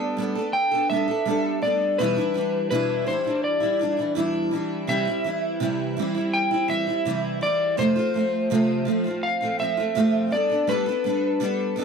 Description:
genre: pop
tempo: 83 BPM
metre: 4/4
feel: straight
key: C major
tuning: A4 = 443 Hz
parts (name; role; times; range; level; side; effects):
- electric slide guitar; melody; 0.0-11.8 s; B4 to G5; -24 LUFS; left 2 dB; none
- picked steel-string acoustic guitar; accompaniment; 0.0-11.8 s; E2 to A4; -24 LUFS; right 2 dB; double-tracked left and right
room: moderate studio reverb, RT60 0.5 s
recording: dry, close 1970s-style studio recording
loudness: -21 LUFS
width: side -6 dB against mid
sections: 0.0-11.8 A section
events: none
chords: 0.0 Gadd9; 2.0 Em7; 4.9 C; 7.8 F; 10.3 Gadd9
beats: 0.53 1.26 | 1.98 2.71 3.43 4.16 | 4.88 5.61 6.33 7.05 | 7.78 8.50 9.23 9.95 | 10.68 11.40

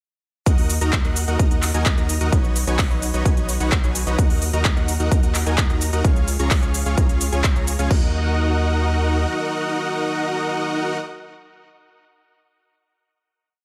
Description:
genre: EDM, festival progressive house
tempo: 129 BPM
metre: 4/4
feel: straight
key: Eb minor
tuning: A4 = 440 Hz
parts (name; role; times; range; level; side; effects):
- dense compressed supersaw; riff; 0.5-11.0 s; Db4 to Bb5; -26 LUFS; equal; sidechain pumping, delay
- saturated sub bass; bass; 0.5-9.3 s; B1 to Eb2; -25 LUFS; equal; sidechain pumping
- big-room dance drum kit; drums; 0.5-8.0 s; crash cymbal, handclaps, hi-hat, shaker; -28 LUFS; equal; none
- electronic kick drum; drums; 0.5-8.0 s; none; -21 LUFS; equal; none
room: digital ambience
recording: none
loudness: -20 LUFS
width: mono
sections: 0.5-7.9 drop; 7.9-11.6 final chord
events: drop 0.5-7.9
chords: 0.5 Ebm; 2.3 Badd9; 4.2 Ebm; 6.0 Db; 7.9 Ebm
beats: | 0.46 0.93 1.40 1.86 | 2.33 2.79 3.25 3.72 | 4.18 4.65 5.12 5.58 | 6.05 6.51 6.98 7.44 | 7.91 8.37 8.84 9.30 | 9.77 10.23 10.70

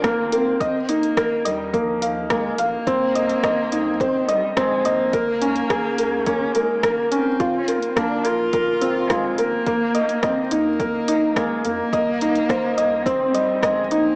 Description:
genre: piano and strings electronica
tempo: 106 BPM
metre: 4/4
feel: straight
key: C minor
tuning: A4 = 440 Hz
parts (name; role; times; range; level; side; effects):
- dark cello; melody; 0.0-14.2 s; F3 to F4; -25 LUFS; equal; none
- felt-muted upright piano; riff; 0.0-14.2 s; Bb3 to F5; -19 LUFS; equal; cassette tape
- warm sub bass; bass; 0.0-14.1 s; Ab1 to F2; -42 LUFS; equal; sidechain pumping
- deep house drum kit; drums; 0.0-14.0 s; hi-hat, rim click; -27 LUFS; equal; overdrive, studio reverb, cassette tape
- electronic kick drum; drums; 0.0-13.7 s; none; -31 LUFS; equal; overdrive, studio reverb, cassette tape
room: wet spring reverb, RT60 1.8 s, small room reverb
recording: home recording on cassette, small speaker sound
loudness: -18 LUFS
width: side -34 dB against mid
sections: 0.0-14.2 A section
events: none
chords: 0.0 Bbsus2; 0.6 Ebsus2; 2.9 Cm; 5.1 Db5; 7.4 Bbsus2; 9.7 Eb5; 11.9 Cm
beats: 0.04 | 0.61 1.17 1.74 2.31 | 2.87 3.44 4.00 4.57 | 5.13 5.70 6.27 6.83 | 7.40 7.96 8.53 9.10 | 9.66 10.23 10.79 11.36 | 11.93 12.49 13.06 13.62

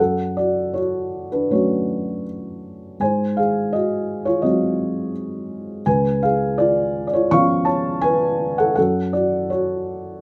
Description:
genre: classical, lyrical solo piano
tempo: 82 BPM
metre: 4/4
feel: rubato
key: F# harmonic minor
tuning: A4 = 441 Hz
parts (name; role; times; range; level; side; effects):
- felt-muted upright piano; solo; 0.0-10.2 s; C#2 to C#6; -21 LUFS; equal; none
room: moderate studio reverb, RT60 0.6 s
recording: none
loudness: -20 LUFS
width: mono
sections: 0.0-10.2 A section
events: none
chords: 0.0 F#m; 3.0 G#7; 5.9 C#7; 8.8 F#m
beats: 0.76 1.52 2.27 | 3.01 3.73 4.44 5.15 | 5.86 6.59 7.32 8.04 | 8.77 9.51

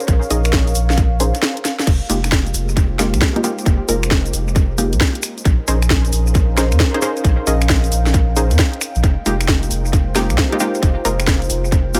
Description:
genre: UK garage, two-step garage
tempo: 134 BPM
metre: 4/4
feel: swing 65% on 16ths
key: F minor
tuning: A4 = 440 Hz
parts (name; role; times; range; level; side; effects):
- punchy chord stab; stabs; 0.0-12.0 s; Ab3 to Eb5; -25 LUFS; equal; chorus, tape echo
- garage drum kit; drums; 0.0-12.0 s; crash cymbal, finger snaps, hi-hat, snare drum; -23 LUFS; equal; overdrive, analog delay
- egg shaker; percussion; 0.0-12.0 s; none; -30 LUFS; equal; none
- warbly tape-like pad; texture; 0.0-12.0 s; F4 to F5; -31 LUFS; equal; chorus, built-in reverb, sidechain pumping
- saturated sub bass; bass; 0.1-12.0 s; F1 to F2; -20 LUFS; equal; none
- electronic kick drum; drums; 0.1-11.8 s; none; -18 LUFS; equal; overdrive
- soft string machine; sustained chords; 1.9-12.0 s; Ab3 to G5; -34 LUFS; equal; none
room: light reverb, digital ambience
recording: echo-heavy mix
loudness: -17 LUFS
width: mono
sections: 0.0-12.0 A section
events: filter sweep on synth stab 0.0-12.0; break 1.4-1.9; drum fill 1.6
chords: 0.0 Bbm11; 1.9 Fm11; 5.2 Bbm11; 9.0 Fm11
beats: | 0.08 0.53 0.98 1.42 | 1.87 2.32 2.77 3.21 | 3.66 4.11 4.56 5.01 | 5.45 5.90 6.35 6.80 | 7.24 7.69 8.14 8.59 | 9.04 9.48 9.93 10.38 | 10.83 11.27 11.72

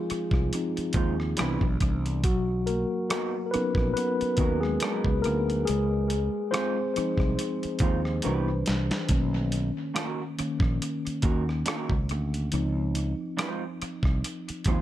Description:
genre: R&B, neo-soul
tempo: 70 BPM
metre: 4/4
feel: swing 56% on 16ths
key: Db major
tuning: A4 = 438 Hz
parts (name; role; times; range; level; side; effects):
- mellow tine electric piano; accompaniment; 0.0-14.8 s; Eb3 to C5; -29 LUFS; left 1 dB; medium stereo tremolo, tape echo
- fretless electric bass; bass; 0.1-14.8 s; Bb1 to Eb2; -28 LUFS; equal; none
- dusty soul sampler-style drum kit; drums; 0.1-14.8 s; hi-hat, kick drum, rim click, snare drum; -29 LUFS; equal; tape echo
- electric guitar through a small old amp; second line; 0.9-14.8 s; Gb3 to C5; -33 LUFS; right 5 dB; none
room: little or no reverb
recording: echo-heavy mix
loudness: -25 LUFS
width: side -13 dB against mid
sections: 0.0-14.8 A section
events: tine electric piano solo 0.0-14.8; drum fill 8.2-9.1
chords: 0.0 Dbmaj9 (rootless); 1.4 Cmaj7; 2.2 Cbmaj7; 5.7 Dbmaj9; 8.2 Cmaj7; 9.1 Cbmaj7; 12.5 Dbmaj9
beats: 0.52 1.38 | 2.24 3.09 3.95 4.81 | 5.66 6.52 7.38 8.24 | 9.09 9.95 10.81 11.66 | 12.52 13.38 14.24

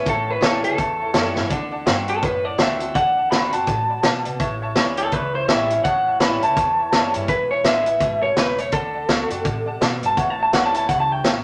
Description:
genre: rockabilly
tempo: 166 BPM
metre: 4/4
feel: swing 60% on 8ths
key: A mixolydian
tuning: A4 = 441 Hz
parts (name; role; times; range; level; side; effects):
- electric guitar through a small old amp; melody; 0.0-11.3 s; A4 to B5; -23 LUFS; equal; none
- picked swing-style acoustic guitar; accompaniment; 0.0-11.4 s; E2 to F#4; -30 LUFS; equal; none
- upright bass; bass; 0.0-11.4 s; E1 to C3; -35 LUFS; equal; none
- bright upright piano; accompaniment; 0.1-11.4 s; B4 to B5; -33 LUFS; equal; none
- vintage drum kit; drums; 0.1-11.3 s; hi-hat, kick drum, snare drum; -24 LUFS; equal; none
room: moderate studio reverb, RT60 0.5 s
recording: none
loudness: -20 LUFS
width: mono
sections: 0.0-11.4 A section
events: drum fill 1.3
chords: 0.0 A7; 1.5 D7; 4.4 A7; 7.3 E7; 8.7 D7; 10.2 A7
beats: | 0.07 0.43 0.80 1.16 | 1.52 1.88 2.24 2.60 | 2.96 3.32 3.68 4.04 | 4.41 4.77 5.13 5.49 | 5.85 6.21 6.57 6.93 | 7.29 7.65 8.01 8.37 | 8.73 9.09 9.45 9.81 | 10.17 10.53 10.89 11.25

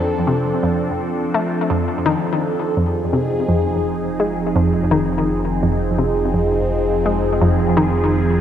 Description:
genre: ambient, sequencer-driven space music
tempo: 84 BPM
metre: 4/4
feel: straight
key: F minor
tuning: A4 = 439 Hz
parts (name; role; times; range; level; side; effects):
- phased analog pad; sustained chords; 0.0-8.4 s; F3 to A4; -19 LUFS; right 1 dB; phaser, chorus
- analog pluck; riff; 0.0-7.9 s; F2 to A3; -20 LUFS; left 1 dB; chorus, analog delay
- fat analog bass; bass; 2.8-8.4 s; F1; -24 LUFS; equal; none
room: wet lush hall reverb, RT60 2.9 s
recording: dreamy mix soaked in reverb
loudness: -16 LUFS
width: side -10 dB against mid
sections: 0.0-2.8 A section; 2.8-8.4 B section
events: none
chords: 0.0 F7; 2.8 Fm7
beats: 0.63 1.34 2.06 | 2.77 3.49 4.20 4.92 | 5.63 6.34 7.06 7.77

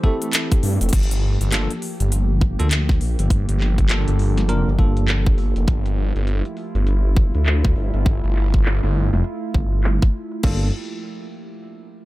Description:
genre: glitch hop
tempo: 101 BPM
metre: 4/4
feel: swing 61% on 16ths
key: G dorian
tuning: A4 = 438 Hz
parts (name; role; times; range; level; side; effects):
- warbly tape-like pad; sustained chords; 0.0-10.7 s; E3 to G4; -29 LUFS; right 1 dB; chorus, built-in reverb, sidechain pumping
- bell-like tine electric piano; stabs; 0.0-5.7, 10.4-10.7 s; Bb3 to Bb4; -28 LUFS; equal; medium stereo tremolo, sidechain pumping, tape echo
- electronic kick drum; drums; 0.0-10.6 s; none; -17 LUFS; equal; none
- drum and bass drum kit; drums; 0.2-10.6 s; crash cymbal, handclaps, hi-hat, snare drum; -26 LUFS; equal; low-pass filter on hats, low-pass filter on snare, low-pass filter on cymbals
- phased detuned saw bass; bass; 0.6-10.7 s; F1 to G2; -19 LUFS; equal; phaser, tube saturation
room: little or no reverb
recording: none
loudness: -17 LUFS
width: side -18 dB against mid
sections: 0.9-10.4 A section; 10.4-12.1 B section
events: filter sweep on drum 0.9-10.4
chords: 0.0 Fmaj7 (rootless); 0.9 Gm7; 5.7 Fmaj7/G; 10.4 Gm7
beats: 0.33 | 0.93 1.52 2.12 2.71 | 3.31 3.90 4.49 5.09 | 5.68 6.28 6.87 7.46 | 8.06 8.65 9.24 9.84 | 10.43

